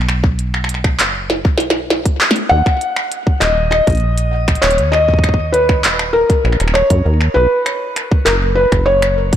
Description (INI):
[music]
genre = IDM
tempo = 99 BPM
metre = 4/4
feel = straight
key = Eb minor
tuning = A4 = 440 Hz
[part]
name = deep acid bass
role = bass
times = 0.0-9.4 s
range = Eb1 to Gb2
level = -17 LUFS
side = equal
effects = none
[part]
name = glitchy drum kit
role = drums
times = 0.0-9.4 s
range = finger snaps, handclaps, hi-hat, snare drum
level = -18 LUFS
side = equal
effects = overdrive
[part]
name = electronic kick drum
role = drums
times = 0.2-9.4 s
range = none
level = -14 LUFS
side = equal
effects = overdrive
[part]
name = felt-muted upright piano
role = melody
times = 2.5-9.4 s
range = Bb4 to Gb5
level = -15 LUFS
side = left 1 dB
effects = shimmer reverb, digital delay
[sound]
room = moderate plate reverb, RT60 2.4 s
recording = blown-out, overdriven recording, overdrive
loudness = -12 LUFS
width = side -10 dB against mid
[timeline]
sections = 0.0-9.4 A section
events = drum fill 1.3-2.5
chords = 0.0 B5; 2.5 Eb5; 7.4 B5